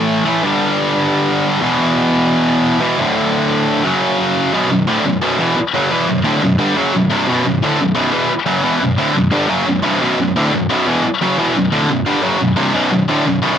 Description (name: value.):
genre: metal.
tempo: 175 BPM.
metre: 4/4.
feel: straight.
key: B minor.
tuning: A4 = 440 Hz.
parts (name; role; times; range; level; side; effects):
heavy high-gain guitar; solo; 0.0-13.6 s; B1 to A3; -13 LUFS; equal; distortion.
room: little or no reverb.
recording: rough home demo mix.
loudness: -13 LUFS.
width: side -8 dB against mid.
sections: 0.0-4.5 A section; 4.5-13.6 B section.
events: none.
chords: 0.4 G5; 1.6 E5; 3.0 D5; 3.8 F#5; 4.5 Bm.